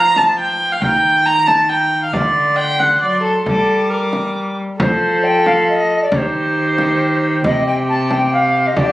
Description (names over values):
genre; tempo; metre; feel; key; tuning
classical, renaissance-style consort dance; 137 BPM; 3/4; straight; unclear; A4 = 440 Hz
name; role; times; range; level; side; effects
mellow alto recorder; melody; 0.0-8.9 s; C5 to D6; -19 LUFS; left 1 dB; none
rich viola; second line; 0.0-8.9 s; G4 to Bb5; -16 LUFS; equal; none
rich cello; bass; 0.0-8.9 s; C3 to G3; -20 LUFS; equal; none
frame drum; percussion; 0.2-8.9 s; none; -21 LUFS; equal; none
room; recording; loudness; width
moderate stone room reverb, RT60 1.1 s; recorded on a phone in the room, studio reverb, compression; -13 LUFS; side -16 dB against mid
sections
0.0-4.8 A section; 4.8-8.9 A section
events
none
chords
0.0 F; 0.8 Eb; 2.1 D7; 3.5 Gm; 4.8 F; 6.1 Eb; 7.4 C5